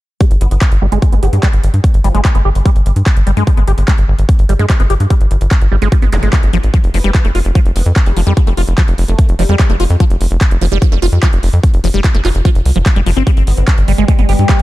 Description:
psychedelic trance; 147 BPM; 4/4; straight; A4 = 444 Hz
liquid acid bass; riff; 0.2-14.5 s; E3 to G4; -19 LUFS; moving between left 7 dB and right 6 dB; phaser, auto-pan, sidechain pumping, digital delay
big-room dance drum kit; drums; 0.2-14.6 s; handclaps, hi-hat; -24 LUFS; equal; overdrive, studio reverb
electronic kick drum; drums; 0.2-14.6 s; -11 LUFS; equal; overdrive, studio reverb
tight sequencer bass; bass; 0.3-14.6 s; F1 to G2; -12 LUFS; equal
resonant blip pluck; second line; 0.4-2.2, 6.9-9.6, 13.5-14.6 s; F3 to B3; -28 LUFS; left 4 dB; phaser, lush chorus, vintage 12-bit sampler grit, sidechain pumping, high-pass filter, dub echo
zap; sound effects; 6.1-6.2 s; -26 LUFS; equal
overtone-sweeping drone; sustained chords; 13.6-14.6 s; G3 to G4; -20 LUFS; left 2 dB; chorus, built-in reverb, sidechain pumping
digital ambience; dark, warm production; -9 LUFS; side -17 dB against mid
0.2-14.6 A section
0.2 N.C.; 6.7 F5; 13.3 N.C.
| 0.21 0.61 1.02 1.43 | 1.84 2.25 2.65 3.06 | 3.47 3.88 4.29 4.70 | 5.10 5.51 5.92 6.33 | 6.74 7.14 7.55 7.96 | 8.37 8.78 9.19 9.59 | 10.00 10.41 10.82 11.23 | 11.63 12.04 12.45 12.86 | 13.27 13.68 14.08 14.49

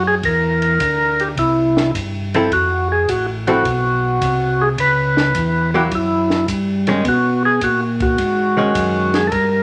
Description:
soul jazz organ trio; 106 BPM; 4/4; swing 68% on 8ths; A4 = 440 Hz
percussive tonewheel organ; melody; 0.0-9.6 s; E4 to B4; -19 LUFS; equal; slow rotary speaker
tonewheel organ; bass; 0.0-9.6 s; F1 to B2; -23 LUFS; equal; slow rotary speaker
compact cocktail drum kit; drums; 0.2-9.5 s; hi-hat, kick drum, ride cymbal, snare drum; -28 LUFS; equal
archtop guitar, miked and amplified; accompaniment; 2.3-9.3 s; D#3 to A4; -21 LUFS; equal
moderate large studio reverb, RT60 1.0 s; -17 LUFS; mono
0.0-9.6 A section
0.2 C9; 2.5 F; 4.8 C#m7; 5.9 F#5; 7.1 B69
| 0.24 0.81 1.37 1.94 | 2.51 3.08 3.65 4.21 | 4.78 5.35 5.92 6.48 | 7.05 7.62 8.19 8.75 | 9.32

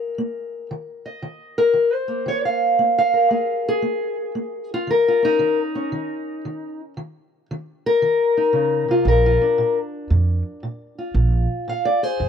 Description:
acoustic country blues, solo or duo; 115 BPM; 4/4; swing 65% on 8ths; A4 = 441 Hz
fingerpicked steel-string acoustic guitar; melody; 0.0-12.3 s; Bb2 to F5; -19 LUFS; left 1 dB
upright bass; bass; 9.1-12.3 s; Bb1 to F2; -18 LUFS; right 2 dB
small room ambience; dry, close 1970s-style studio recording; -18 LUFS; side -7 dB against mid
0.0-12.3 A section
0.0 Bb7(no3); 0.7 Eb5; 2.8 Bb5; 4.9 Eb5; 9.1 Bb
0.17 | 0.69 1.21 1.74 2.26 | 2.78 3.30 3.83 4.35 | 4.87 5.40 5.92 6.44 | 6.97 7.49 8.02 8.54 | 9.06 9.59 10.11 10.63 | 11.16 11.68 12.20

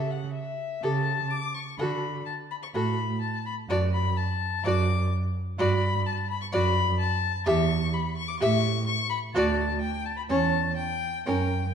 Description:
quick classical-period movement for string quartet; 126 BPM; 4/4; straight; D major; A4 = 440 Hz
warm violin; melody; 0.0-11.7 s; E5 to D6; -30 LUFS; left 8 dB
warm violin; second line; 0.0-11.5 s; A4 to E5; -32 LUFS; left 3 dB
warm viola; accompaniment; 0.0-11.5 s; C#4 to G4; -30 LUFS; right 2 dB
warm cello; bass; 0.0-11.7 s; D2 to D3; -28 LUFS; right 3 dB
wet recital hall reverb, RT60 1.7 s; dark, warm production; -24 LUFS; side -8 dB against mid
0.0-11.7 A section
0.0 A7/C#; 1.8 D; 3.7 D/F#; 5.6 Gmaj7; 6.5 D/F#; 7.5 Em; 8.4 A7; 9.4 D; 10.3 C#dim/E
0.35 0.83 1.31 | 1.79 2.26 2.74 3.21 | 3.69 4.16 4.64 5.11 | 5.58 6.06 6.53 6.99 | 7.46 7.93 8.41 8.88 | 9.35 9.83 10.30 10.78 | 11.27

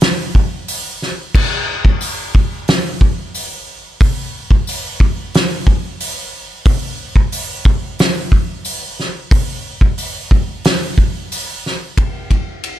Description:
rock; 90 BPM; 4/4; straight
loose indie drum kit; drums; 0.0-12.8 s; crash cymbal, hi-hat, kick drum, ride cymbal, snare drum; -14 LUFS; equal
tambourine; percussion; 0.7-11.5 s; -30 LUFS; left 6 dB
little or no reverb; -14 LUFS; side -13 dB against mid
0.0-12.0 A section
0.01 0.68 | 1.34 2.01 2.67 3.33 | 4.00 4.66 5.33 5.99 | 6.65 7.32 7.98 8.64 | 9.31 9.97 10.64 11.30 | 11.97 12.63

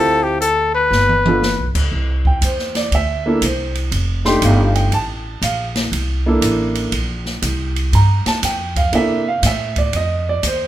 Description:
jazz, small-group swing and bop; 120 BPM; 4/4; swing 66% on 8ths; C mixolydian; A4 = 440 Hz
clear trumpet; melody; 0.0-1.7 s; G4 to B4; -15 LUFS; left 2 dB
warm upright piano; accompaniment; 0.0-10.7 s; A3 to C6; -19 LUFS; right 2 dB
upright bass; bass; 0.0-10.7 s; F1 to C3; -19 LUFS; equal
open jazz drum kit; drums; 0.4-10.6 s; crash cymbal, hi-hat, kick drum, ride cymbal, snare drum, toms; -22 LUFS; right 1 dB
moderate large studio reverb, RT60 1.2 s; minimal, uncompressed stereo recording; -15 LUFS; side -13 dB against mid
0.0-1.9 A section; 1.9-10.7 B section
drum fill 0.9-1.4
0.0 Dm7; 0.9 G7; 1.9 Cadd9; 3.9 F13; 5.9 C13; 7.9 Fadd9; 8.9 C13; 9.9 F7(no3)
0.41 0.92 1.42 | 1.92 2.42 2.92 3.42 | 3.92 4.42 4.92 5.43 | 5.93 6.43 6.93 7.43 | 7.93 8.43 8.93 9.43 | 9.93 10.44

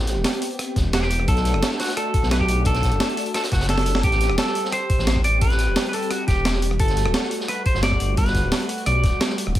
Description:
liquid drum and bass; 174 BPM; 4/4; straight; A4 = 440 Hz
warm analog pad; sustained chords; 0.0-9.6 s; G3 to G4; -29 LUFS; equal; chorus, sidechain pumping
dark detuned saw bass; bass; 0.0-9.6 s; D1 to B1; -22 LUFS; equal
breakbeat sampler-style drum kit; drums; 0.1-9.6 s; hi-hat, rim click, snare drum; -25 LUFS; right 1 dB; studio ambience
vintage drum kit; drums; 0.1-9.6 s; hi-hat, snare drum; -31 LUFS; equal; high-pass filter on hats, studio ambience, high-pass filter on snare, high-pass filter on room
electronic kick drum; drums; 0.8-9.6 s; -22 LUFS; equal; studio ambience
electric guitar at the edge of break-up; melody; 0.9-9.2 s; F#4 to D5; -24 LUFS; equal; tape echo
light reverb, small room ambience; -18 LUFS; side -13 dB against mid
0.0-9.6 A section
kick drops out 3.7-4.0; drum fill 3.7-4.0
0.0 Am7; 1.3 Bm7; 4.0 Am7; 6.8 Gmaj9
0.24 0.59 0.94 | 1.28 1.62 1.97 2.31 | 2.66 3.00 3.35 3.69 | 4.04 4.38 4.73 5.07 | 5.42 5.76 6.11 6.45 | 6.80 7.14 7.49 7.83 | 8.18 8.52 8.87 9.21 | 9.55

